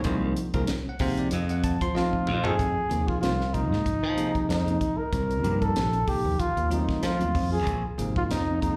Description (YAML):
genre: electric jazz fusion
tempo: 94 BPM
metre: 4/4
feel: swing 55% on 16ths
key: F minor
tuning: A4 = 440 Hz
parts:
  - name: bell-like tine electric piano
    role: accompaniment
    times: 0.0-8.8 s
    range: C3 to C6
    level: -33 LUFS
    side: equal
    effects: slapback echo
  - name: tight funk drum kit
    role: drums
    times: 0.0-8.8 s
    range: hi-hat, kick drum, snare drum, toms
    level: -33 LUFS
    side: equal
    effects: none
  - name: modern bright fingered electric bass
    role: bass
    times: 0.1-8.8 s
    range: Ab1 to F3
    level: -30 LUFS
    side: equal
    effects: none
  - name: dark trumpet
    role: melody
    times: 2.0-8.8 s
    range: Eb4 to Bb4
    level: -30 LUFS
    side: equal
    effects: slapback echo, tape echo
room: moderate club reverb, RT60 0.5 s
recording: live gig heard through the venue's PA, club reverb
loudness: -26 LUFS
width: mono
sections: 0.0-2.6 A section; 2.6-8.8 B section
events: drum fill 1.9-2.6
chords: 0.0 Ab13/C; 1.3 F7; 2.6 Fm7; 5.1 Cm7; 6.4 F7b9; 7.7 Bb9sus4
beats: | 0.05 0.68 1.31 1.95 | 2.58 3.22 3.85 4.49 | 5.12 5.76 6.39 7.03 | 7.66 8.30